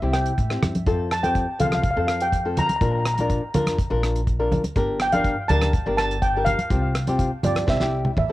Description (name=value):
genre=calypso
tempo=123 BPM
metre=4/4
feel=straight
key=F major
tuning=A4 = 439 Hz
part: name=steel pan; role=melody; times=0.0-8.3 s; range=D5 to Bb5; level=-25 LUFS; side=equal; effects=cassette tape, analog delay
part: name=flamenco guitar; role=accompaniment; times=0.0-8.3 s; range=C4 to Bb4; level=-26 LUFS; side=left 2 dB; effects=cassette tape, plate reverb
part: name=upright bass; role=bass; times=0.0-8.3 s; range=G1 to A2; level=-26 LUFS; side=equal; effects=none
part: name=damped 70s drum kit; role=drums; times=0.1-8.3 s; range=hi-hat, kick drum, rim click, snare drum, toms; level=-26 LUFS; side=equal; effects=cassette tape
part: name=congas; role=percussion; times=0.6-7.7 s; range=none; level=-26 LUFS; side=right 1 dB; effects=none
room=light reverb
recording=home recording on cassette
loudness=-20 LUFS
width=side -16 dB against mid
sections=0.0-8.3 A section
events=drum fill 7.7-8.3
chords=0.0 C; 0.9 F; 2.8 Bb; 4.8 Gm; 6.7 Csus4; 7.7 C